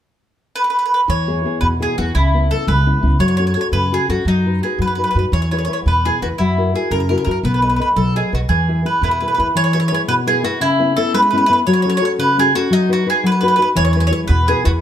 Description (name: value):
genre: italian folk, Italian serenade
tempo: 114 BPM (dotted quarters)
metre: 6/8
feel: straight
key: E major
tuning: A4 = 440 Hz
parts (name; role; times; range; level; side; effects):
- mandolin; melody; 0.6-14.7 s; D#4 to C#5; -17 LUFS; right 1 dB; none
- nylon-string guitar; accompaniment; 1.1-14.8 s; B2 to D#5; -18 LUFS; left 2 dB; none
- upright bass; bass; 1.1-9.5, 13.8-14.8 s; B1 to F#2; -18 LUFS; right 1 dB; none
room: light reverb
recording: close, detailed microphones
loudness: -14 LUFS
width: side -10 dB against mid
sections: 0.0-1.1 A section; 1.1-9.6 B section; 9.6-14.8 B section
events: none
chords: 0.0 N.C.; 1.1 E; 2.1 C#m7; 3.2 F#m; 4.3 B/F#; 5.3 E; 6.4 F#7; 7.4 B7; 8.5 E; 10.6 C#m7; 11.7 F#m; 12.7 B/F#; 13.8 E